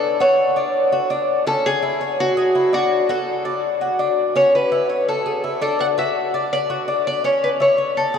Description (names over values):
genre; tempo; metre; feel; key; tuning
latin; 166 BPM; 4/4; straight; unclear; A4 = 440 Hz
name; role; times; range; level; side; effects
Cuban tres; melody; 0.0-8.2 s; F#4 to F#5; -19 LUFS; equal; none
Cuban tres; arpeggios; 0.0-8.2 s; C#4 to D5; -21 LUFS; left 3 dB; none
room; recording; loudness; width
wet huge ambient reverb, RT60 8.3 s; dreamy mix soaked in reverb; -16 LUFS; side -7 dB against mid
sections
0.0-8.2 A section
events
none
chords
0.0 Dmaj7; 1.5 C#madd11; 2.9 D; 4.4 Amaj7; 5.8 D; 7.2 C#m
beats
| 0.03 0.39 0.75 1.11 | 1.47 1.83 2.19 2.55 | 2.91 3.27 3.63 4.00 | 4.36 4.72 5.08 5.44 | 5.80 6.16 6.52 6.88 | 7.24 7.60 7.96